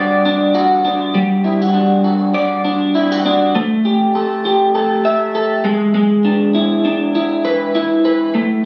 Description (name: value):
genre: indie pop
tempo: 100 BPM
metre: 4/4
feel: swing 55% on 16ths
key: unclear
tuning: A4 = 438 Hz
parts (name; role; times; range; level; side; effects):
- electric guitar through a small old amp; solo; 0.0-8.7 s; G3 to E5; -15 LUFS; equal; analog chorus, warbly pitch drift
room: moderate spring reverb, RT60 1.9 s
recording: recorded on a phone in the room, studio reverb, nothing above 10.4 kHz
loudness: -15 LUFS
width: mono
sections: 0.0-3.5 A section; 3.5-8.7 B section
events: none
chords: 0.0 G5; 3.5 A5; 5.6 E7/G#